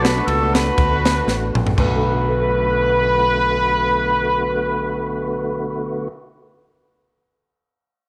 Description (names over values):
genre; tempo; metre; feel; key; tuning
uptempo gospel; 120 BPM; 4/4; swing 55% on 8ths; B minor; A4 = 440 Hz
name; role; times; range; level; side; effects
warm horn section; melody; 0.0-6.1 s; D4 to B4; -22 LUFS; equal; none
clear baby grand piano; accompaniment; 0.0-6.1 s; B1 to B4; -31 LUFS; equal; none
percussive tonewheel organ; sustained chords; 0.0-6.1 s; D3 to F#4; -28 LUFS; equal; slow rotary speaker, overdrive, chorus vibrato
deep dub fingered electric bass; bass; 0.0-6.1 s; A1 to D2; -27 LUFS; equal; none
crisp fusion drum kit; drums; 0.0-1.9 s; crash cymbal, kick drum, ride cymbal, snare drum, toms; -23 LUFS; equal; none
room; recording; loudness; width
moderate spring reverb, RT60 1.8 s, studio reverb; none; -19 LUFS; mono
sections
0.0-1.8 A section; 1.8-5.8 B section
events
drum fill 1.3-1.8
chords
0.0 Bm7